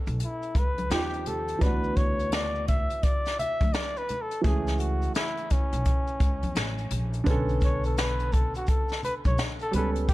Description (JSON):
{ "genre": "hip hop, jazz-hop", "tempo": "85 BPM", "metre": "4/4", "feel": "swing 64% on 16ths", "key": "B dorian", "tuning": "A4 = 439 Hz", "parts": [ { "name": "dark grand piano", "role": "accompaniment", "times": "0.0-10.1 s", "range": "D3 to A4", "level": "-33 LUFS", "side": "right 2 dB", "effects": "none" }, { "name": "upright bass", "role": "bass", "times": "0.1-10.1 s", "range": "A1 to E2", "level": "-30 LUFS", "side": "equal", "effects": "none" }, { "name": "jazz brush drum kit", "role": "drums", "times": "0.1-10.1 s", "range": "hi-hat, kick drum, snare drum", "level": "-26 LUFS", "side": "equal", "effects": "none" }, { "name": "maracas and congas", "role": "percussion", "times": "0.1-10.1 s", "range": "none", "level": "-40 LUFS", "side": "left 1 dB", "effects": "none" }, { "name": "breathy flugelhorn", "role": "melody", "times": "0.2-10.1 s", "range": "C#4 to E5", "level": "-31 LUFS", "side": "left 1 dB", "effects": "none" } ], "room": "small room ambience", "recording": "dark, warm production", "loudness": "-24 LUFS", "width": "side -17 dB against mid", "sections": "0.0-10.1 A section", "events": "flugelhorn solo 0.0-10.1", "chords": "0.0 A9; 0.9 D#69; 1.6 D69; 4.4 Amaj7; 7.3 Bm9" }